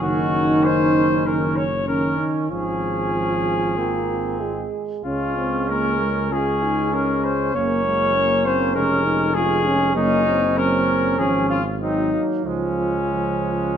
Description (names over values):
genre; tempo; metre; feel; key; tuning
classical, brass quintet; 96 BPM; 4/4; uneven beats, rubato; Db major; A4 = 438 Hz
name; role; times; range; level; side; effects
clear trumpet; melody; 0.0-13.8 s; Db4 to Db5; -23 LUFS; left 4 dB; none
mellow trumpet; second line; 0.0-13.8 s; Ab3 to Db4; -27 LUFS; right 5 dB; none
dark French horn; accompaniment; 0.0-13.8 s; Ab3 to F4; -24 LUFS; left 1 dB; none
warm trombone; accompaniment; 0.0-13.7 s; Eb3 to Bb3; -26 LUFS; right 5 dB; none
clear bass trombone; bass; 0.0-13.8 s; F1 to Db2; -26 LUFS; right 1 dB; none
room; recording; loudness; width
wet recital hall reverb, RT60 1.4 s; none; -18 LUFS; side -8 dB against mid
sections
0.0-13.8 A section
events
none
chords
0.0 Ebm7/Gb; 2.5 Db/Ab; 3.8 Ab; 5.0 Db; 7.5 Gb; 8.8 Db/F; 10.0 Ebm7/Gb; 11.2 Db/Ab; 11.8 Ab7; 12.5 Db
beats
| 0.01 0.64 1.26 1.87 | 2.50 3.14 3.77 4.41 | 5.05 5.70 6.32 6.93 | 7.54 8.15 8.75 9.35 | 9.96 10.58 11.19 11.81 | 12.46 13.11 13.77